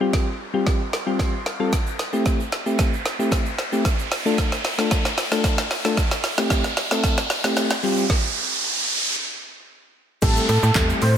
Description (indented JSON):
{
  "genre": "dance-pop",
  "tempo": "113 BPM",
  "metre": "4/4",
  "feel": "straight",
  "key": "A minor",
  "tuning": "A4 = 443 Hz",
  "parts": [
    { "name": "soft electric-piano-like synth keys", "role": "accompaniment", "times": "0.0-11.0 s", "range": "G3 to C6", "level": "-24 LUFS", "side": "left 2 dB", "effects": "chorus, tremolo, sidechain pumping" },
    { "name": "riser and downlifter", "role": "sound effects", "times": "0.0-11.2 s", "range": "none", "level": "-26 LUFS", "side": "right 1 dB", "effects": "none" },
    { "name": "deep house drum kit", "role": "drums", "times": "0.1-11.1 s", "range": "crash cymbal, handclaps, hi-hat, kick drum, shaker, snare drum", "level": "-22 LUFS", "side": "right 1 dB", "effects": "none" },
    { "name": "egg shaker", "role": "percussion", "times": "1.7-11.0 s", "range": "none", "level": "-41 LUFS", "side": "right 13 dB", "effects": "none" },
    { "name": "fat analog lead", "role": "melody", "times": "10.2-11.1 s", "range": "A4 to C5", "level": "-23 LUFS", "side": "right 1 dB", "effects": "chorus, sidechain pumping, tape echo" },
    { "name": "slap-like FM bass", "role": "bass", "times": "10.2-11.2 s", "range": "A1 to A2", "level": "-19 LUFS", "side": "right 1 dB", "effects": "sidechain pumping" }
  ],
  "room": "moderate plate reverb, RT60 1.9 s",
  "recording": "dreamy mix soaked in reverb",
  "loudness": "-19 LUFS",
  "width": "side -9 dB against mid",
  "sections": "0.0-10.2 A section",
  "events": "build-up 0.0-10.2; drum fill 0.0-8.1; riser 0.0-10.2; synth keys fill 0.9-1.7; stop 8.1-10.2",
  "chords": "0.0 Fsus2; 1.7 Am7; 3.9 Dm; 6.0 Am7; 7.8 Fsus2; 9.2 N.C.; 10.2 Am7"
}